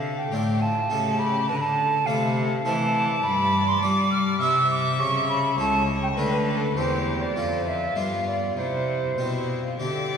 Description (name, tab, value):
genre	classical, baroque-style sonata movement with continuo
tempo	102 BPM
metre	3/4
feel	straight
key	C major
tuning	A4 = 436 Hz
part	rich violin	melody	0.0-10.2 s	E4 to E5	-31 LUFS	left 5 dB	none
part	silver concert flute	second line	0.0-10.2 s	G4 to F6	-24 LUFS	right 2 dB	none
part	harpsichord	accompaniment	0.0-10.2 s	C#2 to E5	-31 LUFS	left 2 dB	none
part	clear cello	bass	0.0-10.2 s	C#2 to G3	-27 LUFS	equal	none
room	wet church reverb, RT60 3.7 s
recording	minimal, uncompressed stereo recording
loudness	-21 LUFS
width	side -7 dB against mid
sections	0.0-10.2 A section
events	none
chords	0.0 Dm; 0.9 A7/C#; 1.5 Dm; 3.2 G5; 4.4 C; 5.0 A/C#; 6.2 Dm; 6.8 C/E; 7.4 F; 8.0 G7; 8.6 C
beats	0.32 0.90 | 1.49 2.07 2.65 | 3.23 3.82 4.41 | 5.00 5.58 6.17 | 6.77 7.36 7.96 | 8.57 9.18 9.79